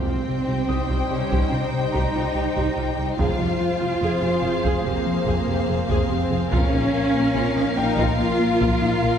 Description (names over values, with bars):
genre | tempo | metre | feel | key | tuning
cinematic, hybrid orchestral and electronic film score | 72 BPM | 4/4 | straight | C phrygian | A4 = 440 Hz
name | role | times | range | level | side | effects
rich symphonic violin section | melody | 0.0-9.2 s | F5 to G5 | -31 LUFS | left 3 dB | none
warm symphonic violin section | second line | 0.0-9.2 s | Bb4 to C5 | -31 LUFS | left 3 dB | none
warm symphonic viola section | accompaniment | 0.0-9.1 s | Db4 to Ab4 | -32 LUFS | right 2 dB | none
lush unison pad | sustained chords | 0.0-9.2 s | F3 to F5 | -29 LUFS | equal | chorus
warm symphonic cello section | bass | 0.0-9.2 s | Bb3 to F4 | -25 LUFS | right 2 dB | none
bright grand piano | texture | 0.0-9.2 s | G5 to Eb6 | -36 LUFS | left 5 dB | tape echo
smooth synth bass | riff | 0.1-9.1 s | C2 to Bb3 | -27 LUFS | left 3 dB | none
warm studio double bass section | bass | 0.1-9.1 s | F1 to C2 | -29 LUFS | right 2 dB | none
taiko ensemble | drums | 1.3-9.2 s | none | -28 LUFS | equal | none
room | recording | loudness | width
wet concert hall reverb, RT60 2.4 s | heard from further back in the room | -19 LUFS | side -8 dB against mid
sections
0.0-9.2 A section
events
none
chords
0.0 Cm; 3.2 Fm; 6.5 Bbm